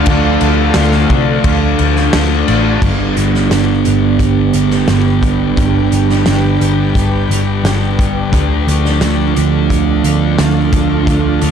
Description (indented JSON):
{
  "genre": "rock, shoegaze and dream pop",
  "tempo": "87 BPM",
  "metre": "4/4",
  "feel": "straight",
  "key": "G mixolydian",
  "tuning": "A4 = 441 Hz",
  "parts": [
    { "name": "granular cloud pad", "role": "sustained chords", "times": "0.0-11.5 s", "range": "D4 to G5", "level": "-22 LUFS", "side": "equal", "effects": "built-in reverb" },
    { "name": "overdriven semi-hollow guitar", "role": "riff", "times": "0.0-11.5 s", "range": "G2 to D4", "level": "-16 LUFS", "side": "right 11 dB", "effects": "reverse reverb" },
    { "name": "overdriven semi-hollow guitar", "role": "riff", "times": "0.0-2.8 s", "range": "D3 to D4", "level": "-18 LUFS", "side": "right 1 dB", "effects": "none" },
    { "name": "thick fuzz guitar", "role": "riff", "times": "0.0-11.5 s", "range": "G2 to D4", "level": "-18 LUFS", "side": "left 10 dB", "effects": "distortion, wide subtle chorus" },
    { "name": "vintage muted picked electric bass", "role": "bass", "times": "0.0-11.5 s", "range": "G1 to C3", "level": "-16 LUFS", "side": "equal", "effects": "none" },
    { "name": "loose indie drum kit", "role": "drums", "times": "0.1-11.5 s", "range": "crash cymbal, hi-hat, kick drum, snare drum", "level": "-18 LUFS", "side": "equal", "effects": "none" }
  ],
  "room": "small room ambience",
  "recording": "dark, warm production",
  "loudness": "-10 LUFS",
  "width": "side -7 dB against mid",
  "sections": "0.0-2.8 A section; 2.8-11.5 B section",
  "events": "none",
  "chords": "0.0 Dm; 2.8 G; 8.3 Dm"
}